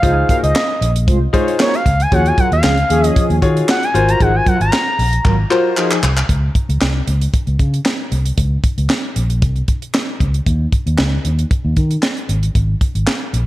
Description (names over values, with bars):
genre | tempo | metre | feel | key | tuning
early-eighties boogie funk | 115 BPM | 4/4 | straight | unclear | A4 = 441 Hz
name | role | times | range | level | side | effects
expressive synth lead | melody | 0.0-5.4 s | Db5 to Bb5 | -18 LUFS | equal | chorus, analog delay
mellow synth brass | second line | 0.0-6.0 s | F3 to Db5 | -20 LUFS | equal | chorus
clear grand piano | accompaniment | 0.0-5.9 s | Eb4 to Db5 | -18 LUFS | left 3 dB | none
fingered electric bass | bass | 0.0-13.5 s | Ab1 to Eb3 | -16 LUFS | equal | none
tight funk drum kit | drums | 0.0-13.5 s | handclaps, hi-hat, kick drum, snare drum | -17 LUFS | equal | gated reverb
room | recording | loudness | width
studio reverb | none | -13 LUFS | side -16 dB against mid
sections
0.0-6.3 A section; 6.3-13.5 B section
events
analog synth lead solo 0.0-6.3; drum fill 5.2-6.3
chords
0.0 Dbmaj9; 2.1 Ebm11; 3.9 Ab13; 6.3 Bbmadd9 (rootless); 10.5 N.C.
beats
| 0.03 0.55 1.07 1.60 | 2.12 2.64 3.16 3.68 | 4.21 4.73 5.25 5.77 | 6.29 6.81 7.33 7.86 | 8.38 8.90 9.42 9.94 | 10.47 10.99 11.51 12.03 | 12.55 13.07